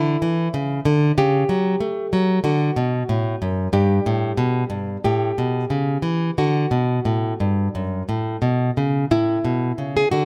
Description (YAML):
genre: classical, baroque-style dance for nylon-string guitar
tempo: 86-95 BPM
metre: 4/4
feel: rubato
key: D major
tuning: A4 = 444 Hz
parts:
  - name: nylon-string guitar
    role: solo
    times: 0.0-10.2 s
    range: F#2 to G#4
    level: -21 LUFS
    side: equal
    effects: none
room: light reverb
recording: close, detailed microphones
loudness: -21 LUFS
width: mono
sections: 0.0-9.1 A section; 9.1-10.2 A section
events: none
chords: 0.0 C#m; 1.2 A7/C#; 2.5 D; 3.7 G; 5.0 A7; 6.4 D (rootless); 9.1 A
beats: 0.55 | 1.18 1.81 2.45 3.09 | 3.73 4.38 5.03 5.70 | 6.38 7.06 7.75 8.43 | 9.11 9.78